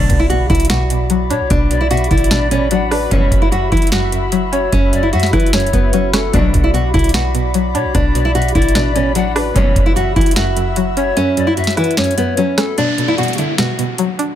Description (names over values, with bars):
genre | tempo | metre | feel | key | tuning
hip hop, trap | 149 BPM | 4/4 | half-time | B minor | A4 = 439 Hz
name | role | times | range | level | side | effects
nylon-string guitar | melody | 0.0-14.3 s | B3 to F#4 | -18 LUFS | equal | ping-pong delay
string-like resonator pluck | accompaniment | 0.0-14.4 s | F#2 to D4 | -20 LUFS | left 1 dB | chorus
airy breathy pad | sustained chords | 0.0-12.7 s | F#4 to B5 | -24 LUFS | equal | chorus
warm symphonic string section | stabs | 0.0-0.3, 3.1-3.5, 6.3-6.7, 9.6-9.9 s | C#2 to F#3 | -24 LUFS | left 4 dB | none
clean 808-style bass | bass | 0.0-11.1 s | E1 to B2 | -18 LUFS | equal | none
impact and downlifter | sound effects | 0.2-1.5, 12.8-14.4 s | none | -25 LUFS | left 1 dB | none
booming analog drum machine | drums | 0.1-14.3 s | hi-hat, kick drum, rim click, snare drum | -17 LUFS | equal | overdrive
breathy reedy pan flute | second line | 1.3-12.8 s | A4 to F#5 | -23 LUFS | left 6 dB | ping-pong delay
room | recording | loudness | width
little or no reverb | none | -12 LUFS | side -11 dB against mid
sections
0.0-12.8 A section; 12.8-14.4 B section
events
impact 0.0-1.5; kick muted 11.2-12.8, 12.8-14.4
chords
0.0 Bm; 3.1 F#7sus4; 6.3 Bm; 9.6 F#7sus4; 12.8 Bm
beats
0.30 0.70 1.10 | 1.50 1.91 2.31 2.71 | 3.12 3.52 3.92 4.32 | 4.73 5.13 5.53 5.93 | 6.34 6.74 7.14 7.54 | 7.95 8.35 8.75 9.15 | 9.56 9.96 10.36 10.77 | 11.17 11.57 11.97 12.38 | 12.78 13.18 13.59 13.99